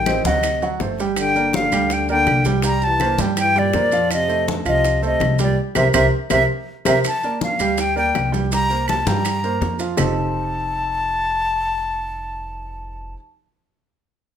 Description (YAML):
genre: Afro-Cuban jazz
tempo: 164 BPM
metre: 4/4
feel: straight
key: F mixolydian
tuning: A4 = 440 Hz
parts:
  - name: breathy silver concert flute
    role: melody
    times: 0.0-13.1 s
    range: D5 to Bb5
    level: -20 LUFS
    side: left 1 dB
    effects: none
  - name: breathy trombone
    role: second line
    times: 0.0-6.9 s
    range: Bb2 to G3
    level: -26 LUFS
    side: left 4 dB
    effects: none
  - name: upright bass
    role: bass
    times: 0.0-13.1 s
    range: F1 to G2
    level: -24 LUFS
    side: equal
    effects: none
  - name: clear concert grand piano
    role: accompaniment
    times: 0.1-13.1 s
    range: F3 to G5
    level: -23 LUFS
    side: right 5 dB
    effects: none
  - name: bongos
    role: percussion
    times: 0.1-10.1 s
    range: none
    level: -30 LUFS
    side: left 5 dB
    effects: none
  - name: claves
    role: percussion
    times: 0.1-10.1 s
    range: none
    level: -29 LUFS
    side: right 9 dB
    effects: none
  - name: congas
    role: percussion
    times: 0.1-10.1 s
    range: none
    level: -28 LUFS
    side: left 3 dB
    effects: none
  - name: maracas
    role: percussion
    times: 0.1-10.1 s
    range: none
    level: -32 LUFS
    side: right 6 dB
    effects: none
room: moderate large studio reverb, RT60 0.9 s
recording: minimal, uncompressed stereo recording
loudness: -17 LUFS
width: side -8 dB against mid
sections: 0.0-7.0 A section; 7.0-10.0 B section; 10.0-12.9 C section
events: band accent 5.6-7.0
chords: 0.4 D7; 1.2 Gm7; 2.6 C13; 4.1 F9; 5.6 C7; 7.0 Gm9; 8.5 C5; 10.0 F9